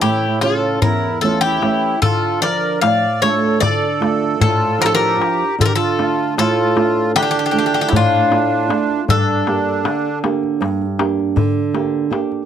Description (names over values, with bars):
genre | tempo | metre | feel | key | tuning
greek folk, Greek bouzouki band | 154 BPM (eighths) | 9/8 | straight | D harmonic minor | A4 = 440 Hz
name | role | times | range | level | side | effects
Greek bouzouki | melody | 0.0-10.2 s | F4 to F5 | -18 LUFS | left 5 dB | none
accordion | second line | 0.0-10.2 s | D4 to D5 | -21 LUFS | right 6 dB | light tremolo tuning
flamenco guitar | accompaniment | 0.0-12.4 s | E2 to G4 | -19 LUFS | right 4 dB | none
darbuka | percussion | 0.0-12.4 s | none | -20 LUFS | left 4 dB | none
room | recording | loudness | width
light reverb | dry, close 1970s-style studio recording | -14 LUFS | side -9 dB against mid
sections
0.0-5.6 A section; 5.6-12.5 B section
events
speeding up 0.0-12.5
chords
0.0 A; 2.0 Dm; 9.1 Gm